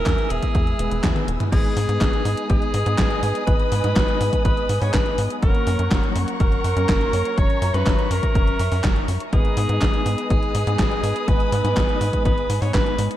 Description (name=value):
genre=italo disco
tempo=123 BPM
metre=4/4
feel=straight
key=G# minor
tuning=A4 = 441 Hz
part: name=edgy alto saxophone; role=melody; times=0.0-13.1 s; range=G#4 to C#5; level=-25 LUFS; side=right 1 dB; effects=ping-pong delay, shimmer reverb
part: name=warm studio string section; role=sustained chords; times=0.0-13.2 s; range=B3 to E6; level=-29 LUFS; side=equal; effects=shimmer reverb
part: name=mellow synth brass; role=stabs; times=0.0-13.2 s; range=F#3 to A#5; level=-29 LUFS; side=left 2 dB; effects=chorus, shimmer reverb
part: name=tight sequencer bass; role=bass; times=0.0-13.1 s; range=E1 to G#2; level=-23 LUFS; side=equal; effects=none
part: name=electronic kick drum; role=drums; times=0.1-12.8 s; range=none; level=-21 LUFS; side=equal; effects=none
part: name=gated 80s digital drum machine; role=drums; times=0.1-13.2 s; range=crash cymbal, handclaps, hi-hat, snare drum, toms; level=-28 LUFS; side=equal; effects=gated reverb, gated reverb snare, overdrive
room=light reverb, digital ambience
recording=dark, warm production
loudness=-18 LUFS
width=side -13 dB against mid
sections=0.0-1.5 A section; 1.5-13.2 B section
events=filter sweep on analog polysynth 0.0-1.5; drum fill 1.0-1.5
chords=0.0 E; 1.5 G#m; 5.4 F#; 9.3 G#m